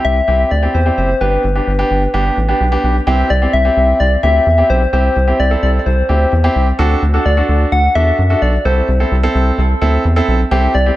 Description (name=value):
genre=synth-pop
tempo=129 BPM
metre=4/4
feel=straight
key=unclear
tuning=A4 = 438 Hz
part: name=soft struck synth lead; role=melody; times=0.0-11.0 s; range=B4 to F#5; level=-17 LUFS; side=left 2 dB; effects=chorus, tremolo, dub echo
part: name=clear grand piano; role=accompaniment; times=0.0-11.0 s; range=B3 to A4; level=-17 LUFS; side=right 1 dB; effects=dub echo
part: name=rubbery square bass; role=bass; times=0.0-10.9 s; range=F#1 to F#2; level=-14 LUFS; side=equal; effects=none
room=moderate spring reverb, RT60 1.9 s, small room reverb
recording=echo-heavy mix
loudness=-11 LUFS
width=side -15 dB against mid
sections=0.0-3.1 A section; 3.1-11.0 B section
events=none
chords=0.0 C; 1.2 G; 3.1 Cadd9; 6.8 D; 8.7 Am/C